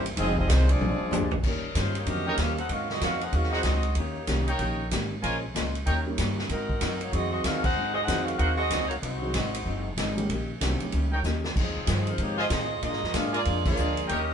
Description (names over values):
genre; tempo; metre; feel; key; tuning
jazz, big band swing; 190 BPM; 4/4; swing 63% on 8ths; unclear; A4 = 440 Hz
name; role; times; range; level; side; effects
warm trumpet section; melody; 0.0-1.3 s; Ab3 to Eb5; -31 LUFS; left 1 dB; none
warm trombone section; second line; 0.0-1.3 s; Eb3 to Eb4; -32 LUFS; right 2 dB; none
archtop guitar, miked and amplified; accompaniment; 0.0-14.3 s; F2 to G4; -35 LUFS; left 5 dB; none
upright bass; bass; 0.0-14.3 s; F1 to Bb2; -28 LUFS; equal; none
swinging big-band drum kit; drums; 0.1-14.2 s; crash cymbal, hi-hat, kick drum, ride cymbal, snare drum, toms; -31 LUFS; right 1 dB; none
warm saxophone section; melody; 1.4-14.3 s; F3 to Gb5; -30 LUFS; right 1 dB; none
warm concert grand piano; accompaniment; 2.1-14.1 s; D3 to Bb4; -34 LUFS; right 1 dB; none
clear trumpet section; stabs; 2.3-6.0, 8.4-8.5, 11.1-14.2 s; Eb4 to Ab5; -31 LUFS; right 1 dB; none
room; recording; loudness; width
moderate stone room reverb, RT60 1.0 s; band playing live in one room, nothing above 11.0 kHz; -24 LUFS; side -8 dB against mid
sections
0.0-1.4 A section; 1.4-14.3 B section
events
drum fill 0.8-1.4, 11.2-11.6; band accent 7.6, 13.6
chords
0.2 Fm7; 0.8 Bb13; 1.4 Eb7; 2.7 Ab7; 4.0 Eb7; 5.2 Bbm7; 5.9 Eb7; 6.5 Ab7; 10.3 Eb7; 11.6 Fm7; 12.8 Bb7